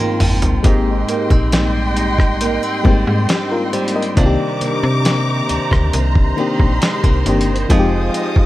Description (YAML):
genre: contemporary R&B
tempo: 68 BPM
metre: 4/4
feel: straight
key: unclear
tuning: A4 = 439 Hz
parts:
  - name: FM electric piano with tremolo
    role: accompaniment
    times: 0.0-8.5 s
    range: Eb3 to Eb5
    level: -20 LUFS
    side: left 3 dB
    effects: none
  - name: warm studio string section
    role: sustained chords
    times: 0.0-8.5 s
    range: F4 to Eb6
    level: -23 LUFS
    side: equal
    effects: none
  - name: nylon-string guitar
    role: arpeggios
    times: 0.0-8.5 s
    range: Ab2 to Ab4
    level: -23 LUFS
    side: right 4 dB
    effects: none
  - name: slap-like FM bass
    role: bass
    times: 0.2-8.5 s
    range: F1 to C3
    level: -18 LUFS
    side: equal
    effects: none
  - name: dusty soul sampler-style drum kit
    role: drums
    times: 0.2-8.5 s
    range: hi-hat, kick drum, rim click, snare drum, toms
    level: -15 LUFS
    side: equal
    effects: none
room: digital ambience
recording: vinyl crackle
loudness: -13 LUFS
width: side -16 dB against mid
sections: 0.6-8.5 A section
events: drum fill 0.0-0.6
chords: 0.0 Ab69; 0.6 Abmaj7; 4.2 Cm9; 7.7 Fm7